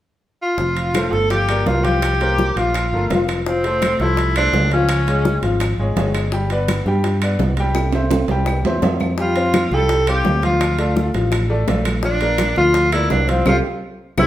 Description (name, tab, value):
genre	latin, salsa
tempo	168 BPM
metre	4/4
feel	straight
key	F major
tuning	A4 = 440 Hz
part	clear tenor saxophone	melody	0.4-5.4, 9.2-14.3 s	C4 to A4	-19 LUFS	equal	none
part	bright upright piano	accompaniment	0.6-14.3 s	F3 to G5	-22 LUFS	left 2 dB	none
part	fingered electric bass	bass	0.6-14.3 s	F1 to G2	-20 LUFS	equal	none
part	bongos	percussion	0.6-14.3 s	none	-27 LUFS	left 4 dB	none
part	congas	percussion	0.6-14.3 s	none	-27 LUFS	right 1 dB	none
part	timbales	percussion	0.8-14.3 s	none	-26 LUFS	right 5 dB	none
part	claves	percussion	0.9-14.3 s	none	-32 LUFS	left 1 dB	none
room	wet large studio reverb, RT60 1.1 s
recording	band playing live in one room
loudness	-15 LUFS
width	side -13 dB against mid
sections	0.6-3.5 A section; 3.5-14.3 B section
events	drum fill 7.8-9.2; band accent 13.5-14.3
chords	0.0 N.C.; 0.6 F; 1.3 Gm7; 2.0 C7sus4; 2.7 Bb5; 3.5 F; 4.9 Db; 6.3 G; 7.8 C; 9.2 Fadd9; 10.6 Dm; 12.0 Bb; 13.5 Csus4